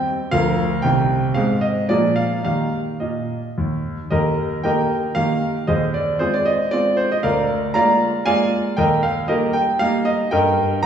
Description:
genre	classical-period piano sonatina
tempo	116 BPM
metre	3/4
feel	rubato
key	Eb major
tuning	A4 = 439 Hz
part	clear concert grand piano	solo	0.0-10.9 s	C2 to Bb5	-17 LUFS	right 1 dB	none
room	wet scoring stage reverb, RT60 2.0 s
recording	recorded in a church or concert hall, studio reverb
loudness	-17 LUFS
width	side -8 dB against mid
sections	0.0-4.1 A section; 4.1-10.9 B section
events	none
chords	0.3 Bb/D; 0.8 Cm; 1.4 Ab; 1.9 Bb7; 2.5 Eb; 5.7 Fm7/Eb; 7.2 Bb7/D; 8.8 Eb; 10.3 Eb/G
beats	0.32 | 0.83 1.36 1.89 | 2.45 3.01 3.57 | 4.12 4.64 5.17 | 5.68 6.21 6.72 | 7.23 7.75 8.27 | 8.78 9.29 9.80 | 10.32 10.84

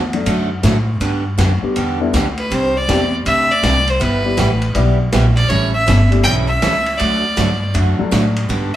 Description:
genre	country, western swing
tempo	161 BPM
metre	4/4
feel	swing 64% on 8ths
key	G major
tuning	A4 = 440 Hz
part	upright bass	bass	0.0-8.7 s	G1 to A2	-17 LUFS	equal	none
part	dark upright piano	accompaniment	0.1-8.5 s	D3 to A4	-21 LUFS	left 4 dB	none
part	vintage drum kit	drums	0.1-8.6 s	hi-hat, ride cymbal, snare drum	-24 LUFS	equal	none
part	picked steel-string acoustic guitar	accompaniment	0.3-8.7 s	C3 to A4	-21 LUFS	right 2 dB	none
part	clear fiddle	melody	2.4-8.8 s	B4 to G5	-17 LUFS	equal	none
room	moderate stone room reverb, RT60 0.9 s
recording	band playing live in one room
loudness	-13 LUFS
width	side -12 dB against mid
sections	0.0-8.8 A section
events	none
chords	0.0 D; 1.0 G; 2.5 Cadd9; 4.0 G6; 5.5 A7; 7.0 D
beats	0.27 0.64 | 1.02 1.39 1.76 2.14 | 2.51 2.88 3.25 3.63 | 4.00 4.38 4.75 5.12 | 5.50 5.87 6.25 6.62 | 6.99 7.37 7.74 8.12 | 8.49

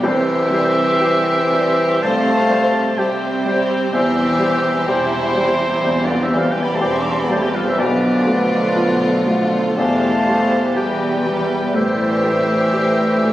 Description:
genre	classical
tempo	62 BPM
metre	4/4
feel	rubato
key	C major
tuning	A4 = 439 Hz
part	warm baby grand piano	melody	0.0-13.3 s	B1 to G4	-22 LUFS	left 1 dB	none
part	warm chamber violin section	melody	0.0-13.3 s	F4 to G4	-32 LUFS	equal	none
part	clear oboe	second line	0.0-13.3 s	C5 to D6	-22 LUFS	equal	none
part	silver concert flute	second line	0.0-13.3 s	G4 to B5	-23 LUFS	right 1 dB	none
part	warm clarinet	second line	0.0-13.3 s	G4 to C5	-27 LUFS	equal	none
part	warm symphonic violin section	second line	0.0-13.3 s	E4 to F5	-26 LUFS	left 1 dB	none
part	mellow bassoon	accompaniment	0.0-13.3 s	F3 to G3	-26 LUFS	right 2 dB	none
part	warm French horn section	sustained chords	0.0-13.3 s	C3 to D4	-22 LUFS	left 1 dB	none
part	warm chamber cello section	bass	0.0-13.3 s	E2 to C3	-24 LUFS	right 2 dB	none
part	warm studio double bass section	bass	0.0-13.3 s	E1 to C2	-30 LUFS	right 1 dB	none
part	rich chamber viola section	accompaniment	0.5-13.3 s	G3 to C4	-28 LUFS	right 1 dB	none
room	moderate scoring stage reverb, RT60 1.5 s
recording	recorded on a phone in the room, studio reverb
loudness	-15 LUFS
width	side -14 dB against mid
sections	0.0-13.3 A section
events	none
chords	0.0 C; 3.9 C/E; 7.8 Bm7b5; 9.8 Em; 11.7 Am7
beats	| 0.03 1.00 2.02 2.97 | 3.93 4.88 5.84 6.81 | 7.78 8.75 9.77 10.76 | 11.74 12.73

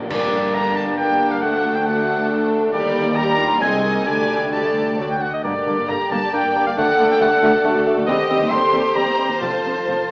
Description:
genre	classical, dramatic, fast romantic movement for symphony orchestra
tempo	135 BPM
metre	3/4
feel	rubato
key	G minor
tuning	A4 = 443 Hz
part	warm symphonic violin section	melody	0.0-10.1 s	G4 to Eb5	-28 LUFS	left 1 dB	none
part	rich symphonic viola section	accompaniment	0.0-10.1 s	G3 to A4	-26 LUFS	equal	none
part	concert harp	arpeggios	0.0-10.1 s	F2 to F5	-30 LUFS	left 1 dB	none
part	rich symphonic cello section	bass	0.0-9.9 s	C2 to G2	-27 LUFS	equal	none
part	warm symphonic double bass section	bass	0.0-9.9 s	F1 to Eb2	-31 LUFS	equal	none
part	timpani	percussion	0.0, 9.4-10.1 s	F2	-36 LUFS	equal	none
part	clear oboe	second line	0.1-10.1 s	D5 to C6	-23 LUFS	equal	none
part	mellow clarinet	second line	0.1-10.0 s	Bb3 to F4	-29 LUFS	equal	none
part	mellow concert flute	second line	0.1-10.1 s	D5 to C6	-25 LUFS	equal	none
part	warm symphonic violin section	second line	0.1-10.1 s	D5 to C6	-28 LUFS	equal	none
part	mellow bassoon	accompaniment	0.1-10.0 s	F3 to Bb3	-26 LUFS	equal	none
part	mellow French horn section	sustained chords	0.1-10.1 s	F#4 to Bb4	-23 LUFS	equal	none
part	clash cymbals and concert bass drum	percussion	0.1-1.0 s	none	-31 LUFS	equal	none
room	moderate concert hall reverb, RT60 2.4 s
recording	worn, warbling old tape, cassette tape, warbly pitch drift, small speaker sound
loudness	-16 LUFS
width	side -28 dB against mid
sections	0.1-10.1 A section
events	band accent 0.1-0.5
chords	0.1 Gm; 1.4 D; 2.7 Ebmaj7; 3.6 Ab/C; 4.1 Dsus4; 5.0 D; 5.4 Gm; 6.8 D; 8.1 Cm/Eb; 9.4 F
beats	| 0.10 0.55 0.99 | 1.43 1.87 2.30 | 2.73 3.17 3.61 | 4.07 4.53 4.99 | 5.45 5.89 6.34 | 6.78 7.22 7.65 | 8.09 8.52 8.96 | 9.42 9.89

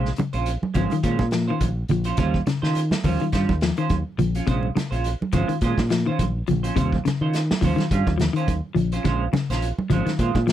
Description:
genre	afrobeat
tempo	105 BPM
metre	4/4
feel	swing 56% on 16ths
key	Bb dorian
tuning	A4 = 440 Hz
part	clean electric guitar	arpeggios	0.0-10.5 s	C3 to F3	-25 LUFS	left 6 dB	none
part	semi-hollow electric guitar	stabs	0.0-10.4 s	G3 to C5	-27 LUFS	right 7 dB	wide subtle chorus
part	fingered electric bass	bass	0.0-10.5 s	Ab1 to Eb3	-24 LUFS	equal	none
part	vintage drum kit	drums	0.1-10.5 s	hi-hat, kick drum, snare drum	-28 LUFS	equal	none
part	congas	percussion	0.2-10.5 s	none	-26 LUFS	right 4 dB	none
room	little or no reverb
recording	none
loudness	-20 LUFS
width	side -11 dB against mid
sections	0.0-10.5 A section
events	none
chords	0.0 Bbm9; 2.2 Eb13; 4.5 Bbm9; 6.8 Eb13; 9.0 Bbm9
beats	0.47 1.04 1.62 | 2.19 2.76 3.33 3.90 | 4.47 5.05 5.62 6.19 | 6.76 7.33 7.90 8.47 | 9.05 9.62 10.19

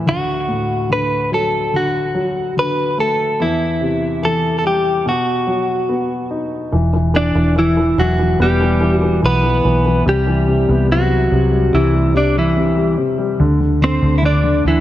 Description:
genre	pop ballad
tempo	72 BPM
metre	4/4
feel	straight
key	E minor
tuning	A4 = 440 Hz
part	warm grand piano	accompaniment	0.0-14.8 s	D2 to D#4	-18 LUFS	left 2 dB	none
part	direct-recorded clean electric guitar	melody	0.1-14.8 s	E3 to D5	-17 LUFS	equal	none
part	vintage muted fingered electric bass	bass	6.7-14.8 s	E1 to D2	-17 LUFS	right 1 dB	none
room	light reverb, studio ambience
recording	none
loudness	-14 LUFS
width	side -13 dB against mid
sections	0.0-6.7 A section; 6.7-14.8 B section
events	none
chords	0.1 D; 3.4 C/E; 5.1 B; 6.7 Em7; 10.1 Cmaj7; 13.4 D7(no3)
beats	| 0.06 0.89 1.73 2.56 | 3.39 4.23 5.06 5.89 | 6.73 7.56 8.39 9.23 | 10.06 10.89 11.73 12.56 | 13.39 14.23

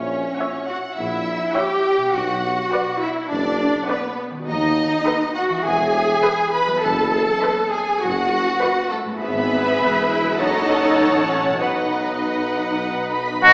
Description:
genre	cinematic, playful, whimsical film cue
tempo	102 BPM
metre	4/4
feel	straight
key	B minor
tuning	A4 = 440 Hz
part	rich symphonic violin section	melody	0.0-13.4 s	A4 to B5	-26 LUFS	equal	none
part	concert harp	arpeggios	0.0-13.5 s	F#2 to B4	-32 LUFS	equal	none
part	rich studio double bass section	bass	0.0-13.5 s	E1 to E2	-36 LUFS	equal	none
part	warm studio cello section	bass	0.0-13.5 s	F#3 to B4	-21 LUFS	equal	none
part	warm tuba	bass	0.0-13.5 s	E1 to D#2	-28 LUFS	equal	none
part	rich studio violin section	second line	0.4-13.5 s	F#4 to B5	-25 LUFS	equal	none
part	rich studio viola section	accompaniment	0.4-13.5 s	G#4 to E5	-24 LUFS	equal	none
part	xylophone with soft rubber mallets	melody	13.4-13.5 s	F#5	-19 LUFS	equal	none
part	bright oboe	second line	13.4-13.5 s	F#4	-5 LUFS	equal	none
part	clear French horn section	sustained chords	13.4-13.5 s	B2	-21 LUFS	equal	none
room	wet scoring stage reverb, RT60 2.1 s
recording	heard from further back in the room, small speaker sound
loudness	-17 LUFS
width	side -39 dB against mid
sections	0.0-13.5 A section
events	none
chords	0.0 F#7/A#; 2.1 Bm; 4.5 B7/D#; 5.7 E; 6.8 B7/F#; 9.2 E/G#; 10.4 F#m; 11.6 B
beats	0.39 0.98 1.56 | 2.15 2.74 3.32 3.90 | 4.49 5.08 5.66 6.25 | 6.84 7.43 8.03 8.62 | 9.21 9.81 10.40 11.00 | 11.61 12.22 12.83 13.44

